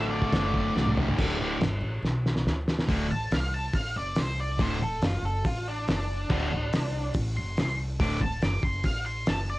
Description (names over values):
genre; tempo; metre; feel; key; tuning
garage rock duo or trio; 141 BPM; 4/4; straight; D mixolydian; A4 = 441 Hz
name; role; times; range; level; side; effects
octave-fuzz lead guitar; melody; 0.0-9.6 s; D4 to D6; -32 LUFS; equal; distortion, cassette tape
thick fuzz guitar; riff; 0.0-8.2 s; D2 to D3; -29 LUFS; equal; distortion, cassette tape
upright bass; bass; 0.0-9.6 s; D1 to D2; -31 LUFS; equal; none
cloth-damped thuddy drum kit; drums; 0.2-9.4 s; crash cymbal, hi-hat, kick drum, snare drum, toms; -29 LUFS; equal; none
room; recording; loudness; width
little or no reverb; home recording on cassette; -25 LUFS; side -18 dB against mid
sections
0.0-1.2 A section; 1.2-2.9 B section; 2.9-9.6 C section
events
drum fill 0.8-1.2, 2.0-2.9; lead electric guitar solo 2.9-9.6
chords
0.0 D; 1.2 D5; 2.9 D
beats
0.33 0.76 | 1.19 1.61 2.04 2.47 | 2.89 3.32 3.75 4.17 | 4.60 5.03 5.45 5.88 | 6.31 6.73 7.16 7.58 | 8.00 8.43 8.85 9.27